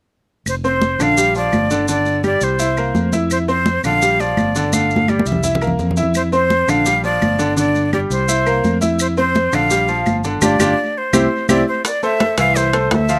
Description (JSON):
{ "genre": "latin, salsa", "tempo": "169 BPM", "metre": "4/4", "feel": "straight", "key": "F major", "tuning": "A4 = 440 Hz", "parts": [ { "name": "breathy bright jazz flute", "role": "melody", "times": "0.5-13.2 s", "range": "C5 to F5", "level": "-21 LUFS", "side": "equal", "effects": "none" }, { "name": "fingered electric bass", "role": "bass", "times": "0.5-13.2 s", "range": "F1 to F2", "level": "-24 LUFS", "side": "equal", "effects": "none" }, { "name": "claves", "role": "percussion", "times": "0.5-11.6 s", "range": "none", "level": "-28 LUFS", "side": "equal", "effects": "none" }, { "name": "congas", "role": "percussion", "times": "0.5-13.2 s", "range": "none", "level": "-23 LUFS", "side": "equal", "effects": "slapback echo" }, { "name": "maracas", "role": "percussion", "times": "0.5-13.2 s", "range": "none", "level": "-30 LUFS", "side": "equal", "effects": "none" }, { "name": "bright concert grand piano", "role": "accompaniment", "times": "0.6-13.2 s", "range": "D3 to F5", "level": "-21 LUFS", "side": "equal", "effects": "none" }, { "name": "bongos", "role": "percussion", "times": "11.8-13.1 s", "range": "none", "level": "-31 LUFS", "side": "equal", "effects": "none" }, { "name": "timbales", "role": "percussion", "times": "11.8-13.1 s", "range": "none", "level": "-24 LUFS", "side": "equal", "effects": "none" } ], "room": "little or no reverb", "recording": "recorded outdoors, with no room sound", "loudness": "-17 LUFS", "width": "mono", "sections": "0.5-11.8 A section; 11.8-13.2 B section", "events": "drum fill 4.7-6.2; band accent 10.4-11.8", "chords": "0.5 F5; 1.2 Bb6; 1.9 G5; 2.6 C7; 3.3 F5; 4.0 Bb6; 4.7 G5; 5.4 C7; 6.2 F5; 6.9 Bb6; 7.6 G5; 8.3 C7; 9.0 F5; 9.7 Bb6; 10.4 G5; 11.1 C; 11.8 Fmaj7" }